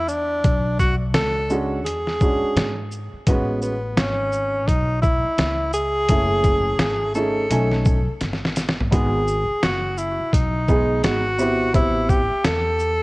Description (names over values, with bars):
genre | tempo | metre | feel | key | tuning
hip hop, jazz-hop | 85 BPM | 4/4 | swing 62% on 16ths | unclear | A4 = 441 Hz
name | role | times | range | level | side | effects
breathy tenor saxophone | melody | 0.0-13.0 s | B3 to A4 | -22 LUFS | equal | tape echo
upright bass | bass | 0.0-13.0 s | F#1 to G#2 | -26 LUFS | equal | none
trip hop sampler-style drum kit | drums | 0.1-13.0 s | hi-hat, kick drum, shaker, snare drum, toms | -21 LUFS | equal | none
dark upright piano | accompaniment | 1.5-12.2 s | G#3 to G#5 | -24 LUFS | right 1 dB | none
room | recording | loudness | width
small room ambience | worn, warbling old tape, cassette tape, warbly pitch drift | -18 LUFS | side -23 dB against mid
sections
0.0-8.9 A section; 8.9-13.0 B section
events
drum fill 8.2-8.9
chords
0.4 Bmadd9; 1.9 E13; 3.3 Amaj13; 6.1 F#m9; 7.5 B13; 8.9 G#m7; 11.7 Am9